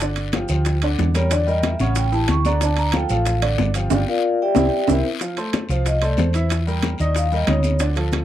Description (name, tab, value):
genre	Afro-Cuban jazz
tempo	185 BPM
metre	4/4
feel	straight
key	F major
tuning	A4 = 440 Hz
part	bright upright piano	accompaniment	0.0-8.2 s	Db3 to F5	-25 LUFS	right 1 dB	none
part	hollow-body short-scale fingered electric bass	bass	0.0-8.2 s	G1 to E2	-20 LUFS	equal	none
part	bongos	percussion	0.0-8.2 s	none	-27 LUFS	left 8 dB	none
part	congas	percussion	0.0-8.2 s	none	-28 LUFS	left 2 dB	none
part	guiro	percussion	0.0-8.2 s	none	-35 LUFS	left 12 dB	none
part	maracas	percussion	0.0-8.2 s	none	-36 LUFS	right 24 dB	none
part	timbales	percussion	0.0-8.2 s	none	-27 LUFS	right 11 dB	none
part	vibraphone with soft mallets	melody	1.2-7.8 s	E4 to C#6	-23 LUFS	left 1 dB	none
room	little or no reverb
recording	dry, close 1970s-style studio recording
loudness	-17 LUFS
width	side -12 dB against mid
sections	0.0-5.2 A section; 5.2-8.2 A section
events	vibraphone solo 0.0-5.2, 5.2-8.2; band accent 3.9-5.2; drum fill 4.7-5.2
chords	0.0 G7(no3); 1.3 Em7b5; 2.0 A7; 2.6 Dm; 3.9 Gm7; 4.6 Cadd9; 5.2 F; 6.5 Edim; 7.2 Eb7